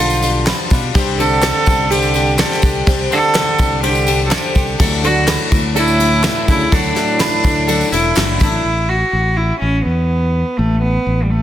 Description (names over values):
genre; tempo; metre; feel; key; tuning
indie folk with a building arrangement; 125 BPM; 4/4; straight; D major; A4 = 444 Hz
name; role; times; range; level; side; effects
rich cello; melody; 0.0-11.4 s; G3 to A4; -18 LUFS; right 1 dB; tape echo
warm trombone; second line; 0.0-8.2 s; A2 to F#3; -23 LUFS; right 4 dB; none
picked twelve-string acoustic guitar; accompaniment; 0.0-8.7 s; B2 to G4; -23 LUFS; left 8 dB; none
ukulele; arpeggios; 0.0-8.6 s; G4 to B4; -25 LUFS; right 5 dB; tape echo
fingered electric bass; bass; 0.0-11.4 s; E1 to B2; -18 LUFS; equal; none
tambourine; percussion; 0.1-8.6 s; none; -32 LUFS; right 11 dB; none
soft brush drum kit; drums; 0.2-8.5 s; kick drum, ride cymbal, snare drum; -17 LUFS; equal; soft clipping on snare
group handclap; percussion; 0.5-8.3 s; none; -28 LUFS; left 6 dB; none
warm upright piano; accompaniment; 0.9-8.7 s; C2 to C5; -27 LUFS; left 5 dB; none
room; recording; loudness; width
light reverb, studio ambience; dense, heavily limited modern master; -12 LUFS; side -11 dB against mid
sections
0.0-8.6 A section; 8.6-11.4 B section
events
none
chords
0.0 G7/B; 0.9 Csus2; 4.8 Dadd9; 8.6 A5